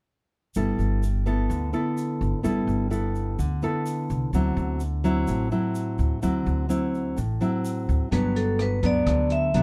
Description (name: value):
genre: bossa nova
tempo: 127 BPM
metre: 4/4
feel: straight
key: G major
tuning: A4 = 441 Hz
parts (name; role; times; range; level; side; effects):
- egg shaker; percussion; 0.5-8.1 s; none; -51 LUFS; equal; none
- nylon-string guitar; accompaniment; 0.6-9.6 s; G2 to A4; -27 LUFS; equal; none
- upright bass; bass; 0.6-9.6 s; G1 to D2; -29 LUFS; equal; none
- vibraphone with medium hard mallets; melody; 8.1-9.6 s; A4 to E5; -28 LUFS; equal; none
- open jazz drum kit; drums; 8.1-9.6 s; hi-hat, kick drum, rim click; -35 LUFS; equal; none
room: little or no reverb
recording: dark, warm production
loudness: -25 LUFS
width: mono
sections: 0.6-8.1 A section; 8.1-9.6 B section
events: none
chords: 0.6 G69; 4.3 D9; 8.1 Gmaj7